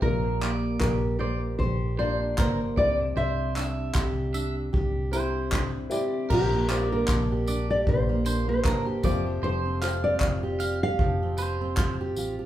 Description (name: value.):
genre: acoustic pop.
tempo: 77 BPM.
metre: 4/4.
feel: swing 55% on 16ths.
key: unclear.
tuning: A4 = 440 Hz.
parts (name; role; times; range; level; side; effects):
nylon-string guitar; melody; 0.0-11.6 s; G4 to F5; -29 LUFS; left 1 dB; none.
dark upright piano; accompaniment; 0.0-12.5 s; A3 to D5; -35 LUFS; left 3 dB; none.
fingerpicked steel-string acoustic guitar; accompaniment; 0.0-12.5 s; Bb2 to G4; -31 LUFS; right 2 dB; none.
electric guitar at the edge of break-up; arpeggios; 0.0-12.0 s; Bb4 to F5; -35 LUFS; right 4 dB; none.
vintage muted fingered electric bass; bass; 0.0-12.5 s; F1 to C2; -30 LUFS; equal; none.
unplugged drum kit; drums; 0.0-12.4 s; crash cymbal, handclaps, kick drum, tambourine; -28 LUFS; equal; none.
room: moderate large studio reverb, RT60 0.9 s.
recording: band playing live in one room.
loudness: -24 LUFS.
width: side -12 dB against mid.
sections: 0.0-6.3 A section; 6.3-12.5 B section.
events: none.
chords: 0.0 Bb6; 2.8 Cadd9; 6.3 Bb6; 9.0 Fadd9.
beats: | 0.02 0.81 1.60 2.38 | 3.17 3.95 4.74 5.52 | 6.30 7.08 7.87 8.65 | 9.43 10.21 10.99 11.77.